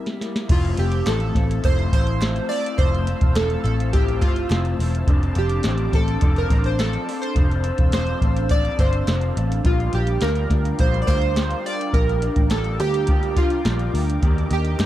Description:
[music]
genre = indie pop, bedroom pop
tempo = 105 BPM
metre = 4/4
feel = straight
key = F major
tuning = A4 = 440 Hz
[part]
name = electric guitar through a small old amp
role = accompaniment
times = 0.0-14.9 s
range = Bb2 to A4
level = -29 LUFS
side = left 2 dB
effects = analog chorus, warbly pitch drift
[part]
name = soft vintage rhythm box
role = drums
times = 0.1-14.9 s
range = crash cymbal, hi-hat, kick drum, snare drum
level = -21 LUFS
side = equal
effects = none
[part]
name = chorused retro synth keys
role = melody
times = 0.5-14.9 s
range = F4 to D5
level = -26 LUFS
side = right 2 dB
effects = wide subtle chorus, tape echo
[part]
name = lush unison pad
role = sustained chords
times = 0.5-14.9 s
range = Bb4 to E6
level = -35 LUFS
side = equal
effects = chorus, phaser
[part]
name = vintage muted picked electric bass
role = bass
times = 0.5-14.9 s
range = E1 to G2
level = -22 LUFS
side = equal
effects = none
[part]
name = group handclap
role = percussion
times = 1.1-14.9 s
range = none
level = -39 LUFS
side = right 2 dB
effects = none
[sound]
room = digital ambience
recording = dark, warm production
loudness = -18 LUFS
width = side -13 dB against mid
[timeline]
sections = 0.5-14.9 A section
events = drum fill 0.0-0.5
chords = 0.5 Fmaj7; 5.1 Dm7/F; 9.6 Bb6; 14.2 Ebmaj7

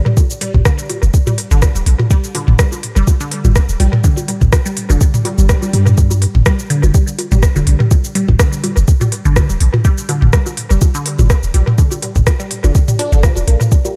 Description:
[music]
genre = minimal techno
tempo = 124 BPM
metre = 4/4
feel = swing 55% on 16ths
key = G minor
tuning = A4 = 439 Hz
[part]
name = resonant blip pluck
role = riff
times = 0.1-13.9 s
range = D3 to D4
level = -24 LUFS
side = equal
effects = phaser, sidechain pumping, analog delay
[part]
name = electronic toms and congas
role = percussion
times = 0.1-13.9 s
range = none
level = -21 LUFS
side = equal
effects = analog delay
[part]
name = electronic kick drum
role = drums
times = 0.2-13.8 s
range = none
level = -14 LUFS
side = equal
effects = none
[part]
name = minimal click drum kit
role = drums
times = 0.2-13.9 s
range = hi-hat, rim click, shaker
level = -24 LUFS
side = equal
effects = analog delay
[part]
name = punchy sub bass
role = bass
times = 0.5-13.6 s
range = D1 to G2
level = -14 LUFS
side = equal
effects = sidechain pumping
[part]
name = swell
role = sound effects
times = 5.2-6.0 s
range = none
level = -30 LUFS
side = equal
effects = none
[sound]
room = light reverb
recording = echo-heavy mix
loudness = -13 LUFS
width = mono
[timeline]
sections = 0.0-14.0 A section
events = swell 5.2-6.0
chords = none

